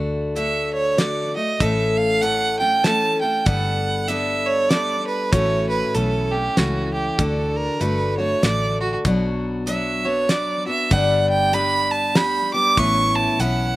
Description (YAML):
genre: honky-tonk and classic country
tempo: 97 BPM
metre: 3/4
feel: swing 60% on 8ths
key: D major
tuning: A4 = 440 Hz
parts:
  - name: picked steel-string acoustic guitar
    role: accompaniment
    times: 0.0-13.8 s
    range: G2 to A4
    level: -23 LUFS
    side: left 2 dB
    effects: slapback echo
  - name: vintage muted fingered electric bass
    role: bass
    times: 0.0-13.8 s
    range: G1 to D2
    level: -25 LUFS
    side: equal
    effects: none
  - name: clear fiddle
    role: second line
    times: 0.4-13.8 s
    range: F#4 to D6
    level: -21 LUFS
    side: right 2 dB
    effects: none
  - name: damped 70s drum kit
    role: drums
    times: 0.4-13.6 s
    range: hi-hat, kick drum, snare drum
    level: -20 LUFS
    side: equal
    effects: none
room: little or no reverb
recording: recorded outdoors, with no room sound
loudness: -18 LUFS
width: side -17 dB against mid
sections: 0.0-13.8 A section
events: fiddle solo 0.0-13.8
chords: 0.0 D; 1.6 A; 3.5 Gadd9; 5.3 A6; 7.2 D; 9.1 Bm; 10.9 G; 12.8 Aadd9